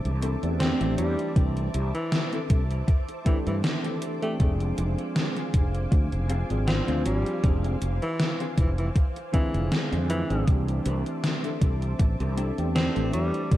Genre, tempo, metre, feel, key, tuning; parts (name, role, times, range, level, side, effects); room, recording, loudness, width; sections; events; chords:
vaporwave; 79 BPM; 4/4; swing 54% on 16ths; C major; A4 = 440 Hz
tine electric piano; accompaniment; 0.0-13.6 s; D3 to Ab4; -32 LUFS; right 1 dB; analog chorus, analog delay
soft string machine; sustained chords; 0.0-13.6 s; C5 to E6; -38 LUFS; equal; ensemble chorus, vintage 12-bit sampler grit
mellow electric guitar; riff; 0.0-13.4 s; C4 to A4; -36 LUFS; left 4 dB; ensemble chorus, analog delay
fretless electric bass; bass; 0.1-13.6 s; F1 to G2; -27 LUFS; equal; ensemble chorus
gated 80s digital drum machine; drums; 0.1-13.6 s; hi-hat, snare drum; -29 LUFS; equal; gated reverb, gated reverb snare, overdrive
breathy alto saxophone; melody; 0.6-13.6 s; E3 to C4; -32 LUFS; equal; tape echo
electronic kick drum; drums; 1.4-13.6 s; -22 LUFS; equal; overdrive
light reverb; -23 LUFS; side -14 dB against mid
0.0-13.6 A section
0.0 C69; 4.4 Fm6; 10.5 C69